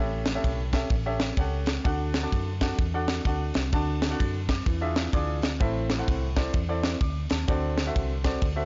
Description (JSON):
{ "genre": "uptempo gospel", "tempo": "128 BPM", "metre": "4/4", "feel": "swing 62% on 8ths", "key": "unclear", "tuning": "A4 = 445 Hz", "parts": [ { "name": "clear grand piano", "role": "accompaniment", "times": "0.0-8.7 s", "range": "A2 to A6", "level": "-33 LUFS", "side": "equal", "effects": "none" }, { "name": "vintage muted fingered electric bass", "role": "bass", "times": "0.0-8.7 s", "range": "A1 to F#2", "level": "-32 LUFS", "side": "equal", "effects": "none" }, { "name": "crisp fusion drum kit", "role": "drums", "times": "0.3-8.6 s", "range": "kick drum, ride cymbal, snare drum", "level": "-30 LUFS", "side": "equal", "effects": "none" } ], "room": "little or no reverb", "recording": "blown-out, overdriven recording, overdrive, nothing above 7.5 kHz", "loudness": "-27 LUFS", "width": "mono", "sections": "0.0-8.7 A section", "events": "none", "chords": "0.0 A7; 1.8 D; 4.7 E7b9; 5.6 Am; 7.5 D7" }